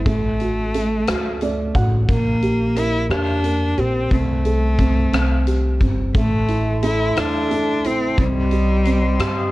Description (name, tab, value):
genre	six-eight pop ballad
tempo	59 BPM (dotted quarters)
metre	6/8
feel	straight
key	unclear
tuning	A4 = 435 Hz
part	clear cello	melody	0.0-9.5 s	G3 to E4	-23 LUFS	left 1 dB	none
part	felt-muted upright piano	accompaniment	0.0-9.5 s	A3 to F#5	-23 LUFS	right 2 dB	none
part	upright bass	bass	0.0-9.5 s	G1 to G2	-21 LUFS	equal	none
part	huge arena drum kit	drums	0.1-9.4 s	hi-hat, kick drum, rim click	-23 LUFS	equal	none
part	chorused pulse-width pad	sustained chords	6.1-9.5 s	G4 to C6	-26 LUFS	equal	none
room	light reverb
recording	cassette tape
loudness	-16 LUFS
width	side -18 dB against mid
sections	0.0-9.5 A section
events	felt piano fill 1.1-2.1, 9.2-9.5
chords	0.1 D/A; 2.1 Gm/Bb; 4.1 Am/C; 5.1 C5; 6.2 Am; 8.2 Cm